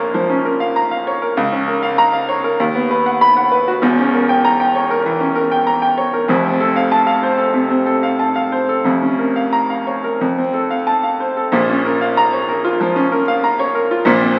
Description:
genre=classical, virtuoso piano study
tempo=88-99 BPM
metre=4/4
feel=rubato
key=Bb minor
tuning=A4 = 439 Hz
part: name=clear grand piano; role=solo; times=0.0-14.4 s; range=E1 to B5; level=-16 LUFS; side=equal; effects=none
room=wet recital hall reverb, RT60 1.5 s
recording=very old 78 rpm record, vinyl crackle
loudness=-16 LUFS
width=mono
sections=0.0-11.5 A section; 11.5-14.4 B section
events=none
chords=0.0 Bbm; 1.4 Bbm/Db; 2.6 B/D#; 3.8 Edim7; 6.3 F; 8.8 Bbm/F; 10.2 F; 11.5 Bbm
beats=0.14 0.76 | 1.37 1.98 2.60 3.22 | 3.83 4.44 5.05 5.67 | 6.29 6.91 7.54 8.19 | 8.85 9.53 10.21 10.87 | 11.53 12.17 12.79 13.43 | 14.06

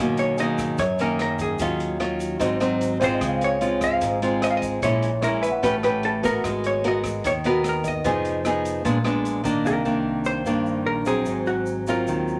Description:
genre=bossa nova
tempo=149 BPM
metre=4/4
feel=straight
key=unclear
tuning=A4 = 440 Hz
part: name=hollow-body jazz guitar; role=melody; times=0.0-12.4 s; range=Gb4 to F5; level=-29 LUFS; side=equal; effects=none
part: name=nylon-string guitar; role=accompaniment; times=0.0-12.4 s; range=F#2 to B4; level=-25 LUFS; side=equal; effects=none
part: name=fingered electric bass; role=bass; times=0.0-12.4 s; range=F1 to G2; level=-36 LUFS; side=equal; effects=none
part: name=open jazz drum kit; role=drums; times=0.2-9.5 s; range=hi-hat, kick drum, rim click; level=-37 LUFS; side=equal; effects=none
part: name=egg shaker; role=percussion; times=0.2-12.4 s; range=none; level=-48 LUFS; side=equal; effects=none
part: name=warm concert grand piano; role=accompaniment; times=0.4-12.4 s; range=Ab4 to Bb5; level=-36 LUFS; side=equal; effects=none
room=moderate large studio reverb, RT60 0.8 s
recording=none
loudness=-23 LUFS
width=mono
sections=0.0-9.7 A section; 9.7-12.4 B section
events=none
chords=0.0 Bmaj9; 1.6 Ebm9; 2.4 Ab7; 3.2 Dbmaj7; 4.8 Bbm7b5; 5.6 A9; 6.4 Abm9; 8.0 Fm7b5; 8.9 Bb7b9; 9.7 Cm9; 11.3 Ab13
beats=0.38 0.79 1.19 | 1.59 2.00 2.40 2.80 | 3.21 3.61 4.01 4.42 | 4.82 5.22 5.63 6.03 | 6.43 6.84 7.24 7.64 | 8.05 8.45 8.85 9.26 | 9.66 10.06 10.46 10.87 | 11.27 11.68 12.08

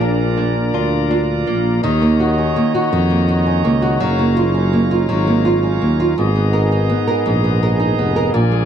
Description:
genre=six-eight pop ballad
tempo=55 BPM (dotted quarters)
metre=6/8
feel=straight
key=Eb minor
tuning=A4 = 440 Hz
part: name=nylon-string guitar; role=accompaniment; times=0.0-8.7 s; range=Ab2 to Bb4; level=-18 LUFS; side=right 3 dB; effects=none
part: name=bright tonewheel organ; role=sustained chords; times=0.0-8.7 s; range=Cb4 to Bb5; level=-22 LUFS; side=left 2 dB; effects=overdrive, slow rotary speaker
part: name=direct-recorded clean electric guitar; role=arpeggios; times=0.0-2.4 s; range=F3 to F4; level=-24 LUFS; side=left 15 dB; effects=none
part: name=dark tuba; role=bass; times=0.0-8.7 s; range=F1 to F2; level=-17 LUFS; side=equal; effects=none
room=little or no reverb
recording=dry, close 1970s-style studio recording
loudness=-14 LUFS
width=side -9 dB against mid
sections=0.0-1.8 A section; 1.8-8.7 B section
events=none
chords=0.0 Bb; 1.8 Ebm7; 4.0 Gbmaj7; 6.2 Abmadd9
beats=0.74 | 1.84 2.93 | 4.02 5.10 | 6.19 7.27 | 8.35

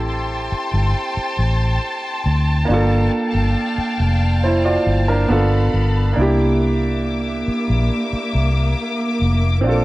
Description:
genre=R&B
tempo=69 BPM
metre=4/4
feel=straight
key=unclear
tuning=A4 = 443 Hz
part: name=warm concert grand piano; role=accompaniment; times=0.0-9.8 s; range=Bb3 to D5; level=-21 LUFS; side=right 2 dB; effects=none
part: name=clear studio string section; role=sustained chords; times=0.0-9.8 s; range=Bb3 to D6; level=-24 LUFS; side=left 1 dB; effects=none
part: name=vintage muted fingered electric bass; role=bass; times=0.0-9.8 s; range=F1 to D2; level=-18 LUFS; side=equal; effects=none
room=light reverb, small room ambience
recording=worn, warbling old tape, cassette tape, warbly pitch drift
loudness=-16 LUFS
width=side -18 dB against mid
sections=0.0-9.8 A section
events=none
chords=0.0 Am7; 2.7 Gm9; 5.3 G9; 6.2 C9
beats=0.09 0.95 1.82 | 2.69 3.56 4.43 5.30 | 6.17 7.04 7.91 8.78 | 9.65

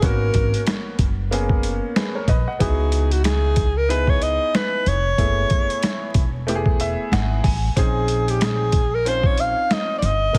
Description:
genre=hip hop, jazz-hop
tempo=93 BPM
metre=4/4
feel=swing 57% on 16ths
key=unclear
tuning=A4 = 443 Hz
part: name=breathy alto saxophone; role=melody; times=0.0-10.4 s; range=Gb4 to F5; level=-25 LUFS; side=equal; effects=none
part: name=warm upright piano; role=accompaniment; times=0.0-10.4 s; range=A3 to Ab5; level=-29 LUFS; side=equal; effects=none
part: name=upright bass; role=bass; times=0.0-10.4 s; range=Fb1 to Db2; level=-24 LUFS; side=equal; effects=none
part: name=boom bap sampler-style drum kit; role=drums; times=0.0-10.4 s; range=hi-hat, kick drum, snare drum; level=-24 LUFS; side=equal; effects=overdrive
room=light reverb, small room ambience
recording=heavily compressed radio sound, multiband compression, vinyl crackle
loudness=-20 LUFS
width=mono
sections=0.0-10.4 A section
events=upright piano fill 6.5-7.8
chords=0.0 Abm11; 2.6 Dbm11; 5.2 Gbm11; 7.8 Bbm11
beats=| 0.03 0.67 1.32 1.96 | 2.61 3.25 3.90 4.54 | 5.19 5.83 6.48 7.12 | 7.77 8.41 9.06 9.70 | 10.35

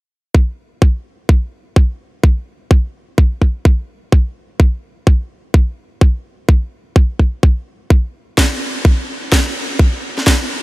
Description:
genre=bass house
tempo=127 BPM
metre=4/4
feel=swing 61% on 16ths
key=none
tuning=none
part: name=electronic kick drum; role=drums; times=0.3-10.4 s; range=none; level=-10 LUFS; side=equal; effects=none
part: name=electronic snare drum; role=drums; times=8.4-10.4 s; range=none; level=-17 LUFS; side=equal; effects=none
room=little or no reverb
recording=none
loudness=-13 LUFS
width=side -21 dB against mid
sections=0.3-10.6 A section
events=none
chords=none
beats=| 0.34 0.82 1.29 1.76 | 2.23 2.71 3.18 3.65 | 4.12 4.60 5.07 5.54 | 6.01 6.49 6.96 7.43 | 7.90 8.38 8.85 9.32 | 9.79 10.27

